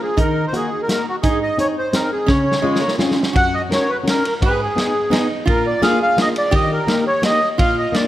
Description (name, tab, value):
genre	alpine folk, alpine dance band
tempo	170 BPM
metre	3/4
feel	straight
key	Db major, F# major from 3.4 s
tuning	A4 = 440 Hz
part	accordion	melody	0.0-8.1 s	Gb4 to F#5	-19 LUFS	equal	light tremolo tuning
part	metal-body resonator slide guitar	second line	0.0-8.1 s	Ab3 to G#4	-23 LUFS	right 4 dB	none
part	fingerpicked plugged-in steel-string acoustic guitar	accompaniment	0.2-8.1 s	F#2 to A#4	-22 LUFS	left 2 dB	none
part	loose indie drum kit	drums	0.2-8.0 s	hi-hat, kick drum, ride cymbal, snare drum	-21 LUFS	equal	none
room	moderate scoring stage reverb, RT60 1.9 s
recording	none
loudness	-15 LUFS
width	side -14 dB against mid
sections	0.0-3.4 A section; 3.4-8.1 B section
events	drum fill 2.3-3.4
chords	0.2 Ebm; 1.2 Ab; 2.3 Db; 3.4 F#; 4.4 G#m; 5.5 A#; 6.5 D#